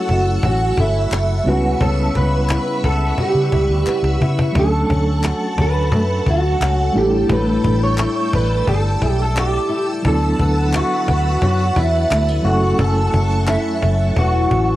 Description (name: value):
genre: indie pop, bedroom pop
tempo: 87 BPM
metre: 4/4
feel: straight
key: unclear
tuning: A4 = 440 Hz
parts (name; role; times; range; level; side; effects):
- electric guitar at the edge of break-up; melody; 0.0-14.8 s; E4 to C#5; -20 LUFS; right 2 dB; ensemble chorus, cassette tape, tape echo
- flamenco guitar; accompaniment; 0.0-14.8 s; F#2 to A4; -24 LUFS; left 4 dB; wide subtle chorus, vibrato effect
- mellow reed electric piano; accompaniment; 0.0-14.8 s; F#3 to B4; -24 LUFS; right 2 dB; fast tremolo, cassette tape
- string machine, violins; sustained chords; 0.0-14.8 s; A4 to E6; -29 LUFS; equal; ensemble chorus
- vintage muted fingered electric bass; bass; 0.1-14.8 s; E1 to C#3; -18 LUFS; equal; none
- cajon; drums; 0.1-14.8 s; none; -22 LUFS; equal; cassette tape
- group handclap; percussion; 1.1-13.6 s; none; -30 LUFS; left 2 dB; none
room: small room reverb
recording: home recording on cassette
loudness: -15 LUFS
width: side -15 dB against mid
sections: 0.0-14.8 A section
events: drum fill 3.9-4.5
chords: 0.0 F#m7; 1.5 C#m7b5; 4.5 Dmaj7; 7.0 A7sus4; 10.0 D69; 12.5 F#m7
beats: 0.43 1.11 | 1.80 2.49 3.17 3.86 | 4.55 5.24 5.92 6.61 | 7.30 7.98 8.67 9.36 | 10.04 10.73 11.42 12.11 | 12.79 13.48 14.17